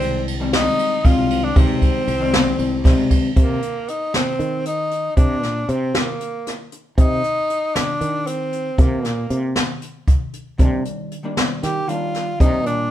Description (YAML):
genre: progressive instrumental, band music in an uneven meter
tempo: 232 BPM (eighths)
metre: 7/8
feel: straight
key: C minor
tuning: A4 = 440 Hz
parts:
  - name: warm tenor saxophone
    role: melody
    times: 0.0-12.9 s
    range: Bb3 to G4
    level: -22 LUFS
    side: equal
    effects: none
  - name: vintage hollow-body jazz guitar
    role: accompaniment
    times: 0.0-3.3, 10.6-12.9 s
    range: Eb3 to Eb4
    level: -24 LUFS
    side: left 3 dB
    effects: none
  - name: sustaining fretless electric bass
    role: bass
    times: 0.0-12.9 s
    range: C2 to Eb3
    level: -23 LUFS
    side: equal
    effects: none
  - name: jazz brush drum kit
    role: drums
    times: 0.0-12.8 s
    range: hi-hat, kick drum, ride cymbal, snare drum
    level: -18 LUFS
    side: equal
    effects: none
room: moderate studio reverb, RT60 0.7 s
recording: band playing live in one room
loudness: -17 LUFS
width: side -12 dB against mid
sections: 0.0-3.4 A section; 3.4-12.9 B section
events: none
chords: 0.0 Fm9/C (rootless); 3.4 Cm7